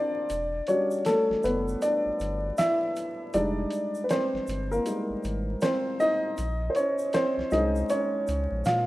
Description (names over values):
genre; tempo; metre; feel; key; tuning
lo-fi hip hop; 79 BPM; 4/4; swing 61% on 16ths; unclear; A4 = 445 Hz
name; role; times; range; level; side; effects
dark upright piano; accompaniment; 0.0-8.9 s; G3 to F5; -25 LUFS; equal; cassette tape, low-pass filter
warm sub bass; bass; 0.3-8.9 s; E1 to Bb2; -32 LUFS; equal; none
dusty soul sampler-style drum kit; drums; 0.3-8.9 s; hi-hat, snare drum; -36 LUFS; equal; overdrive, vintage 12-bit sampler grit
egg shaker; percussion; 0.3-8.9 s; none; -50 LUFS; right 3 dB; none
room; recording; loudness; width
moderate lush hall reverb, RT60 2.4 s; rough home demo mix, vinyl crackle; -24 LUFS; side -17 dB against mid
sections
0.0-8.9 A section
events
break 0.0-8.9; upright piano solo 0.0-8.9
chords
0.3 Em9; 3.3 Fm9 (rootless); 6.4 Bbm9